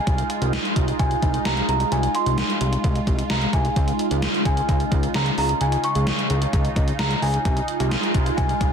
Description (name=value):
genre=synth-pop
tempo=130 BPM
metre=4/4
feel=straight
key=F minor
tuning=A4 = 438 Hz
part: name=celesta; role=melody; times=0.0-8.7 s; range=Ab5 to Db6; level=-27 LUFS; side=right 1 dB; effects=ping-pong delay
part: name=phased analog pad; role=sustained chords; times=0.0-8.7 s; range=Db3 to F4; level=-26 LUFS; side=right 1 dB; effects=phaser, chorus
part: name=fat analog bass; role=bass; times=0.1-8.7 s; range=C2 to Db2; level=-24 LUFS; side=equal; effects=none
part: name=gated 80s digital drum machine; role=drums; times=0.1-8.7 s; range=hi-hat, kick drum, snare drum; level=-23 LUFS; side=equal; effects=gated reverb, gated reverb snare
room=light reverb, digital ambience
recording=dense, heavily limited modern master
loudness=-19 LUFS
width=side -7 dB against mid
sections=0.0-8.7 A section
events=none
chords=0.1 Fm7/C; 3.8 Dbadd9; 7.5 Fm7/C